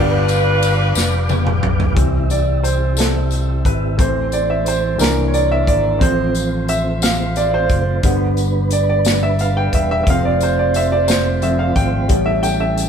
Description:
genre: slow gospel.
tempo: 59 BPM (dotted quarters).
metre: 6/8.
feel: straight.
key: C major.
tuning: A4 = 440 Hz.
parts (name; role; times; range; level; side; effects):
clear saxophone section; melody; 0.0-1.6 s; D4 to B4; -19 LUFS; left 2 dB; none.
clear grand piano; accompaniment; 0.0-12.9 s; G2 to G5; -18 LUFS; right 1 dB; none.
mellow tonewheel organ; sustained chords; 0.0-12.9 s; G3 to D6; -25 LUFS; right 4 dB; fast rotary speaker, chorus vibrato.
fingered electric bass; bass; 0.0-12.9 s; E1 to C2; -19 LUFS; left 1 dB; none.
natural country drum kit; drums; 0.3-12.9 s; hi-hat, kick drum, ride cymbal, snare drum, toms; -20 LUFS; left 1 dB; none.
tambourine; percussion; 0.3-12.9 s; none; -29 LUFS; left 6 dB; none.
room: moderate stone room reverb, RT60 1.6 s.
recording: band playing live in one room.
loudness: -14 LUFS.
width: side -7 dB against mid.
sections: 0.0-2.0 A section; 2.0-12.9 B section.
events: drum fill 1.0-2.0; grand piano solo 2.0-12.9.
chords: 0.0 G7; 2.0 C; 4.0 Am; 5.0 C9; 6.0 F/A; 8.0 G; 10.1 F; 12.1 A7.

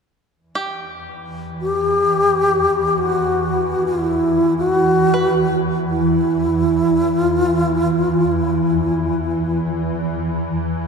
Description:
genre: world meditative, free-time meditation music.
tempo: free time.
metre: none.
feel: none.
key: E hirajoshi.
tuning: A4 = 440 Hz.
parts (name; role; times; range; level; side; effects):
swarming drone; drone; 1.3-10.9 s; E2 to E3; -21 LUFS; equal; built-in reverb.
bluegrass banjo; texture; 0.6-10.9 s; G4 to B4; -30 LUFS; equal; none.
breathy wooden-headed alto flute; melody; 1.6-9.6 s; E4 to G4; -17 LUFS; equal; diffuse ambient delay.
room: wet cathedral reverb, RT60 4.8 s.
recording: dark, warm production.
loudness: -16 LUFS.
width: side -5 dB against mid.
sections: 0.4-10.9 A section.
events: none.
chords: none.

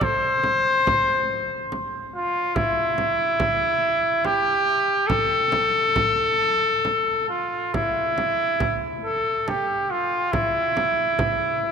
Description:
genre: caucasian folk, Caucasian lament.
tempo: 70 BPM.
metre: 3/4.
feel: rubato.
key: unclear.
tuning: A4 = 444 Hz.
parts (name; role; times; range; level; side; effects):
clear trumpet; melody; 0.0-11.7 s; E4 to C5; -20 LUFS; left 1 dB; none.
frame drum; percussion; 0.0-11.4 s; none; -30 LUFS; right 2 dB; none.
room: wet church reverb, RT60 3.5 s.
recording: none.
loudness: -20 LUFS.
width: side -6 dB against mid.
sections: 0.0-7.7 A section; 7.7-11.7 A section.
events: none.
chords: none.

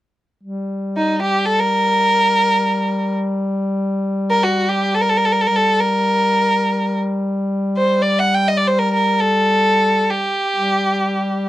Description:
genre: arabic.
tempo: free time.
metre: none.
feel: none.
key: G maqam nahawand.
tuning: A4 = 440 Hz.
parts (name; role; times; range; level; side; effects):
mellow duduk; drone; 0.4-11.5 s; G3; -20 LUFS; left 1 dB; none.
rich violin; melody; 1.0-11.5 s; Eb4 to G5; -16 LUFS; equal; none.
room: light reverb.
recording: dry, close 1970s-style studio recording.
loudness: -15 LUFS.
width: side -14 dB against mid.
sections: 0.4-11.5 A section.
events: none.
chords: none.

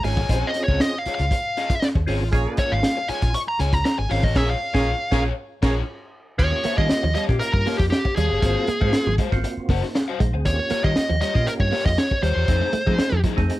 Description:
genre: funk.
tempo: 118 BPM.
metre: 4/4.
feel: straight.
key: Bb dorian.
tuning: A4 = 440 Hz.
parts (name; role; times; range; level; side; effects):
smooth overdriven lead guitar; melody; 0.0-13.2 s; G4 to Db6; -24 LUFS; equal; plate reverb.
direct-recorded clean electric guitar; riff; 0.0-0.1, 6.5-13.3 s; F3 to Bb3; -29 LUFS; right 5 dB; none.
percussive tonewheel organ; stabs; 0.0-13.6 s; A3 to F5; -31 LUFS; right 2 dB; chorus vibrato, slow rotary speaker, plate reverb.
vintage muted fingered electric bass; bass; 0.0-13.5 s; Gb1 to F3; -23 LUFS; equal; none.
crunchy breakbeat drum kit; drums; 0.0-13.6 s; crash cymbal, hi-hat, kick drum, snare drum; -23 LUFS; equal; none.
raw garage guitar; accompaniment; 0.1-13.5 s; A3 to Gb5; -30 LUFS; left 6 dB; overdrive, plate reverb.
warm horn section; second line; 2.3-5.8 s; Ab4 to Db5; -30 LUFS; right 3 dB; plate reverb.
room: light reverb.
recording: none.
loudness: -19 LUFS.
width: side -16 dB against mid.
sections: 0.0-6.4 A section; 6.4-13.6 B section.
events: lead electric guitar solo 0.0-6.4; band accent 4.4-6.4.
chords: 0.0 Bbm7; 6.4 Eb9; 8.4 Ab13; 10.5 Eb9; 12.5 F7#9.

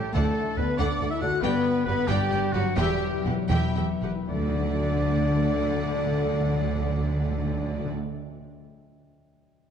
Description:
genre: cinematic.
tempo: 74-93 BPM (dotted quarters).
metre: 6/8.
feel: straight.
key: D major.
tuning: A4 = 437 Hz.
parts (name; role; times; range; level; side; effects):
clear oboe; second line; 0.0-7.9 s; F#4 to F#5; -36 LUFS; right 2 dB; none.
concert flute; second line; 0.0-7.9 s; D5 to F#6; -34 LUFS; left 1 dB; none.
rich studio violin section; second line; 0.0-7.9 s; F#4 to F#5; -40 LUFS; left 1 dB; none.
dark French horn section; sustained chords; 0.0-7.9 s; D3 to F#4; -29 LUFS; left 3 dB; none.
concert harp; arpeggios; 0.0-8.2 s; E2 to B5; -33 LUFS; left 8 dB; none.
warm symphonic violin section; melody; 0.1-7.9 s; D5 to G5; -38 LUFS; left 1 dB; none.
bright symphonic cello section; bass; 0.1-7.9 s; D2 to G2; -32 LUFS; right 3 dB; none.
timpani; percussion; 0.1-0.8, 4.3-7.9 s; D3; -31 LUFS; equal; none.
clear symphonic viola section; accompaniment; 0.2-7.9 s; D4 to E5; -36 LUFS; right 1 dB; none.
rich symphonic double bass section; bass; 0.2-7.9 s; E1 to D2; -30 LUFS; right 3 dB; none.
room: moderate scoring stage reverb, RT60 2.0 s.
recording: dark, warm production.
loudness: -23 LUFS.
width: side -8 dB against mid.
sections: 0.0-4.3 A section; 4.3-7.5 B section.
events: slowing down 0.8-4.3.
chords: 0.1 D; 1.4 G; 2.8 Emadd9; 4.3 D.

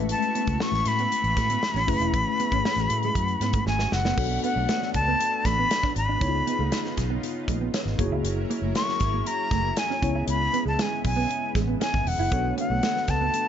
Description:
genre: polished 1980s jazz-funk pop.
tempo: 118 BPM.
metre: 4/4.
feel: straight.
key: B dorian.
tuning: A4 = 440 Hz.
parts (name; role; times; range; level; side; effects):
mellow tine electric piano; accompaniment; 0.0-13.5 s; G#3 to A5; -31 LUFS; left 4 dB; medium stereo tremolo, analog chorus.
lush unison pad; sustained chords; 0.0-13.5 s; C#3 to C#6; -37 LUFS; equal; chorus.
mellow electric guitar; riff; 0.0-13.4 s; G#3 to E4; -32 LUFS; right 9 dB; ensemble chorus.
vintage muted fingered electric bass; bass; 0.0-13.3 s; E1 to A2; -28 LUFS; right 1 dB; none.
breathy bright jazz flute; melody; 0.1-13.5 s; F#5 to C#6; -26 LUFS; left 2 dB; none.
modern studio drum kit; drums; 0.1-13.5 s; crash cymbal, hi-hat, kick drum, snare drum; -30 LUFS; equal; none.
room: light reverb, studio reverb.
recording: nothing above 7.6 kHz.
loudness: -22 LUFS.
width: side -9 dB against mid.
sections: 0.0-4.2 A section; 4.2-13.5 B section.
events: drum fill 3.7-4.2.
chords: 0.0 Amaj9; 4.2 Bm9; 6.2 C#9; 8.0 F#7; 10.0 C#m7; 12.3 Bm9.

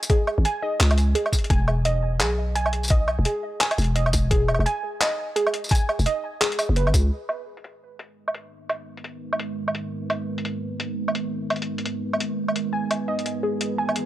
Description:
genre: half-time drum and bass.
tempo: 171 BPM.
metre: 4/4.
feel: swing 60% on 16ths, half-time.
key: G# minor.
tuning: A4 = 440 Hz.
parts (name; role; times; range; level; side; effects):
warbly dusty pluck; arpeggios; 0.0-6.9, 12.7-14.1 s; G#4 to G#5; -27 LUFS; right 1 dB; chorus, analog delay.
boom bap sampler-style drum kit; drums; 0.0-14.0 s; handclaps, hi-hat, tambourine, woodblock; -25 LUFS; equal; low-pass filter on perc, low-pass filter on hats, low-pass filter on snare.
electronic kick drum; drums; 0.1-7.0 s; none; -21 LUFS; equal; none.
growling 808-style bass; bass; 0.4-7.1 s; E1 to C#2; -21 LUFS; equal; none.
deep dark ambient pad; sustained chords; 8.8-14.1 s; G#3 to G#5; -28 LUFS; right 2 dB; chorus, built-in reverb, sidechain pumping.
room: light reverb.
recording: dry, gritty hardware recording.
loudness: -21 LUFS.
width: side -14 dB against mid.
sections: 0.0-7.1 A section; 7.1-14.1 B section.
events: filter sweep on drum 7.1-14.1; filter sweep on ambient pad 7.1-14.1.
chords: 0.0 G#5; 1.5 E; 7.1 G#m; 12.7 E.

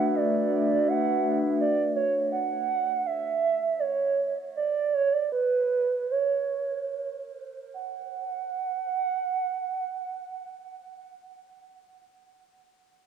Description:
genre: dream pop.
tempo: 70-83 BPM.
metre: 4/4.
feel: straight.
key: D major.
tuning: A4 = 442 Hz.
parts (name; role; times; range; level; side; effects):
hollow clarinet-like synth lead; melody; 0.0-11.3 s; B4 to F#5; -26 LUFS; right 5 dB; chorus, plate reverb, analog delay.
glass harmonica; sustained chords; 0.0-1.5 s; A3 to E5; -26 LUFS; left 2 dB; cassette tape, plate reverb.
room: wet studio reverb, RT60 0.6 s.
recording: home recording on cassette.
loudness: -24 LUFS.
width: side -8 dB against mid.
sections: 0.0-7.7 A section; 7.7-11.1 B section.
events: slowing down 1.6-7.7.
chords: 0.0 D; 1.6 N.C..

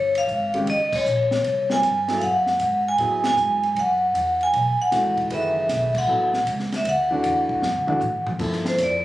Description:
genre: modal jazz.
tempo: 155 BPM.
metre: 4/4.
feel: swing 66% on 8ths.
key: unclear.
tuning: A4 = 436 Hz.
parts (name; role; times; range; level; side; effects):
vibraphone with medium hard mallets; melody; 0.0-9.0 s; C5 to Ab5; -20 LUFS; equal; none.
upright bass; bass; 0.0-9.0 s; Gb1 to A2; -31 LUFS; equal; none.
compact cocktail drum kit; drums; 0.1-8.9 s; crash cymbal, hi-hat, kick drum, ride cymbal, snare drum, toms; -32 LUFS; equal; none.
warm grand piano; accompaniment; 0.5-9.0 s; Eb3 to Cb5; -27 LUFS; left 1 dB; none.
room: moderate large studio reverb, RT60 1.4 s.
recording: recorded on a phone in the room, studio ambience, compression.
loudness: -19 LUFS.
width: side -15 dB against mid.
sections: 0.0-8.4 A section.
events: band accent 0.9, 3.2, 5.9; drum fill 7.6-8.4.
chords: 0.0 Bbm9; 2.2 Gbm11; 6.8 D; 8.4 G7sus2.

